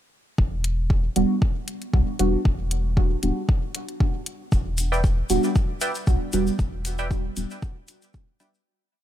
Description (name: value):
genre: dub techno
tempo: 116 BPM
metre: 4/4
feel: swing 54% on 16ths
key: E minor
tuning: A4 = 440 Hz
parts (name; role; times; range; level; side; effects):
- soft dub sub bass; bass; 0.4-7.5 s; D1 to B1; -25 LUFS; equal; sidechain pumping
- electronic kick drum; drums; 0.4-8.3 s; none; -22 LUFS; equal; overdrive
- electronic hi-hat; drums; 0.6-8.5 s; none; -32 LUFS; left 2 dB; overdrive
- deep mellow chord stab; stabs; 1.2-8.6 s; G3 to F#4; -26 LUFS; right 2 dB; chorus, phaser, sidechain pumping, dub echo
- tube shaker; percussion; 4.5-8.6 s; none; -35 LUFS; left 2 dB; none
- wavetable chord stab; riff; 4.9-8.5 s; B4 to G5; -31 LUFS; right 1 dB; sidechain pumping, dub echo
room: digital ambience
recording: none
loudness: -21 LUFS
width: side -12 dB against mid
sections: 0.4-8.7 groove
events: fade-out 5.9-8.7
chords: 0.4 Em7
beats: | 0.38 0.90 1.42 1.94 | 2.45 2.97 3.49 4.00 | 4.52 5.04 5.56 6.07 | 6.59 7.11 7.62 8.14